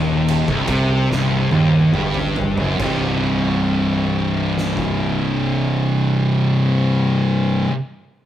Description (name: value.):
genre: stoner and doom metal.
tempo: 68-75 BPM.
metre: 4/4.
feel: straight.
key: C minor.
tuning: A4 = 441 Hz.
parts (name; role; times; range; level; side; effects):
fuzz guitar; riff; 0.0-7.7 s; C2 to Eb4; -23 LUFS; equal; distortion.
thick fuzz guitar; riff; 0.0-7.7 s; C2 to C3; -21 LUFS; left 3 dB; distortion.
thick fuzz guitar; riff; 0.0-7.7 s; C2 to C3; -21 LUFS; right 3 dB; distortion.
modern bright fingered electric bass; bass; 0.0-7.6 s; C1 to C2; -26 LUFS; equal; overdrive.
oversized low-tuned drum kit; drums; 0.3-5.0 s; crash cymbal, kick drum, ride cymbal, snare drum, toms; -27 LUFS; right 1 dB; none.
room: moderate stone room reverb, RT60 1.1 s.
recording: rough rehearsal-room recording.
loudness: -16 LUFS.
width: side -11 dB against mid.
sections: 0.0-2.8 A section; 2.8-6.3 B section.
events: slowing down 0.0-2.8; drum fill 1.1-2.8.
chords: 0.0 Cm.